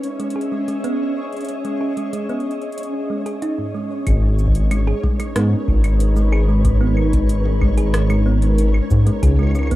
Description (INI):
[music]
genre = IDM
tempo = 93 BPM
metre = 4/4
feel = straight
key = G# minor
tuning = A4 = 440 Hz
[part]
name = glassy FM pad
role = sustained chords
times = 0.0-9.8 s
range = G#3 to E5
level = -24 LUFS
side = equal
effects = ensemble chorus, built-in reverb
[part]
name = booming analog drum machine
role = drums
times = 0.0-9.8 s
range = claves, hi-hat, rim click, shaker, toms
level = -30 LUFS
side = left 1 dB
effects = none
[part]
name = flickering grainy texture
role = texture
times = 0.0-9.8 s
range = C#4 to C#5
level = -32 LUFS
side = left 2 dB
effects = built-in reverb, plate reverb
[part]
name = thumb-piano-like synth pluck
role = arpeggios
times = 0.2-9.8 s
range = G#2 to G#4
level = -27 LUFS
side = right 2 dB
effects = chorus, ping-pong delay
[part]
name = dark detuned saw bass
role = bass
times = 4.1-9.8 s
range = G#1 to G#2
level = -16 LUFS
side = equal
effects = tube saturation
[part]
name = electronic kick drum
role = drums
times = 4.1-9.8 s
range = none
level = -21 LUFS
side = equal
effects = none
[sound]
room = moderate studio reverb, RT60 0.6 s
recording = rough home demo mix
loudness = -16 LUFS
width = side -16 dB against mid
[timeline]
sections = 0.0-4.1 A section; 4.1-9.8 B section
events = none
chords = 0.0 C#m7; 4.1 G#m; 9.2 C#m7